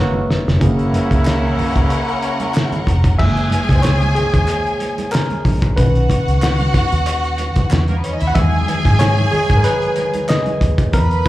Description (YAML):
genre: lush 1970s-style soul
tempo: 93 BPM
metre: 4/4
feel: swing 54% on 16ths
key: unclear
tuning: A4 = 439 Hz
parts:
  - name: tine electric piano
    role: accompaniment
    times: 0.0-11.3 s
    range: A#2 to F#5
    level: -20 LUFS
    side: equal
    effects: overdrive, slapback echo
  - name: warm horn section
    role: stabs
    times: 0.0-2.8 s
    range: C#3 to F#4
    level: -22 LUFS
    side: right 1 dB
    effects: slapback echo
  - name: vintage muted fingered electric bass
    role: bass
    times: 0.0-11.2 s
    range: E#1 to G#2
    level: -16 LUFS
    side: equal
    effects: none
  - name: congas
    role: percussion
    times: 0.1-11.3 s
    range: none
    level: -28 LUFS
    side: right 4 dB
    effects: slapback echo
  - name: cloth-damped thuddy drum kit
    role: drums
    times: 0.3-11.3 s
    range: crash cymbal, hi-hat, kick drum, snare drum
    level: -20 LUFS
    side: equal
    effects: none
  - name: rich studio violin section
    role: second line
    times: 0.6-11.3 s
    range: A#3 to B5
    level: -22 LUFS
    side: left 1 dB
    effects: slapback echo
  - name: group handclap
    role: percussion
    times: 1.3-10.5 s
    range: none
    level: -34 LUFS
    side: right 2 dB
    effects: none
room: little or no reverb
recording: live gig heard through the venue's PA, club reverb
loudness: -14 LUFS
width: side -16 dB against mid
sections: 0.6-3.2 A section; 3.2-11.3 B section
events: drum fill 0.0-0.6; tine electric piano solo 3.2-11.3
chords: 0.0 F#7; 3.2 F#7 (rootless); 5.8 Bmaj7; 8.4 Emaj7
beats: | 0.61 1.26 1.90 2.55 | 3.19 3.84 4.48 5.13 | 5.78 6.42 7.07 7.71 | 8.36 9.00 9.65 10.29 | 10.94